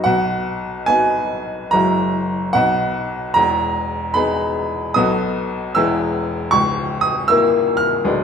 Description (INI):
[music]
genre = classical, romantic character piece for solo piano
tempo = 67-81 BPM (dotted quarters)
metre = 6/8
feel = rubato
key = B major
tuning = A4 = 444 Hz
[part]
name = bright upright piano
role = solo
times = 0.0-8.2 s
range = C#1 to E#6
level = -16 LUFS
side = equal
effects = none
[sound]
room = wet recital hall reverb, RT60 1.6 s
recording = minimal, uncompressed stereo recording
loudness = -16 LUFS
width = side -7 dB against mid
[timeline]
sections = 0.1-8.2 A section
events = none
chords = 0.1 B; 1.7 F#9; 2.5 B; 3.4 Emaj7; 5.0 B7; 5.8 E; 6.5 A#dim/C#